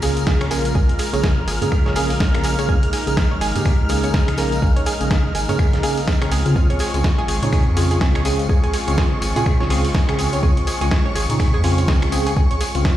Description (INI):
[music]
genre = deep house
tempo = 124 BPM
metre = 4/4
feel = swing 59% on 16ths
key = Bb minor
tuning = A4 = 441 Hz
[part]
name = warm analog pad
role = sustained chords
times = 0.0-13.0 s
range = Ab3 to Bb4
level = -29 LUFS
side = left 1 dB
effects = chorus, sidechain pumping
[part]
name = analog pluck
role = arpeggios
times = 0.0-12.9 s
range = Ab4 to Db5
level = -28 LUFS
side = right 4 dB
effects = chorus, sidechain pumping, dub echo
[part]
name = tine electric piano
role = stabs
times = 0.0-12.9 s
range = Db3 to Bb4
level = -23 LUFS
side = right 1 dB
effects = medium stereo tremolo, sidechain pumping, tape echo
[part]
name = round analog bass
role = bass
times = 0.0-13.0 s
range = Ab1 to Db3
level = -22 LUFS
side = equal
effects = sidechain pumping
[part]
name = dusty soul sampler-style drum kit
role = drums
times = 0.0-13.0 s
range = finger snaps, hi-hat, snare drum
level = -26 LUFS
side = equal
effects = none
[part]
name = tambourine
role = percussion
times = 0.0-13.0 s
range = none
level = -34 LUFS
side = left 4 dB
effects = none
[part]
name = soft string machine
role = texture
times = 0.0-13.0 s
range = Db6 to F6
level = -30 LUFS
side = equal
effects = ensemble chorus, sidechain pumping
[part]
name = electronic kick drum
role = drums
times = 0.3-13.0 s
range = none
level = -18 LUFS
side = equal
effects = overdrive
[sound]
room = light reverb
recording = played on a big sound system in a bare room, stone room reverb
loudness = -16 LUFS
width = side -13 dB against mid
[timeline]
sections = 0.0-13.0 A section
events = none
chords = 0.0 Bbm7; 6.3 Dbmaj7